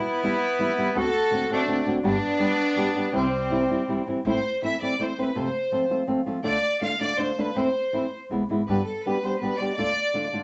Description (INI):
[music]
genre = mexican folk, mariachi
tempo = 164 BPM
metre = 3/4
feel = straight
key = C major, A minor from 4.3 s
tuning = A4 = 440 Hz
[part]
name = rich studio violin section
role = melody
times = 0.0-10.3 s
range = C4 to F5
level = -28 LUFS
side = equal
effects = none
[part]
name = warm trumpet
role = second line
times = 0.0-4.1 s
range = G3 to F#4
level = -31 LUFS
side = equal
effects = none
[part]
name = nylon-string guitar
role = accompaniment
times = 0.2-10.4 s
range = F2 to G4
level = -28 LUFS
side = equal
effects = none
[part]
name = upright bass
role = bass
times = 1.0-9.9 s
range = F1 to G2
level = -38 LUFS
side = equal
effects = none
[sound]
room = wet small room reverb, RT60 0.5 s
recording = nothing above 8.0 kHz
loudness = -25 LUFS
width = mono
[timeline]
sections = 0.0-4.3 A section; 4.3-10.4 B section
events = none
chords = 0.0 Em; 1.0 D7; 2.0 G; 3.1 C; 4.3 Am; 5.4 F; 6.5 Dm; 7.6 Am/E; 8.3 E; 8.7 G; 9.8 Dm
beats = 0.23 0.59 | 0.96 1.32 1.68 | 2.05 2.41 2.77 | 3.14 3.51 3.88 | 4.26 4.63 5.00 | 5.36 5.73 6.09 | 6.46 6.82 7.19 | 7.56 7.93 8.30 | 8.68 9.04 9.41 | 9.78 10.14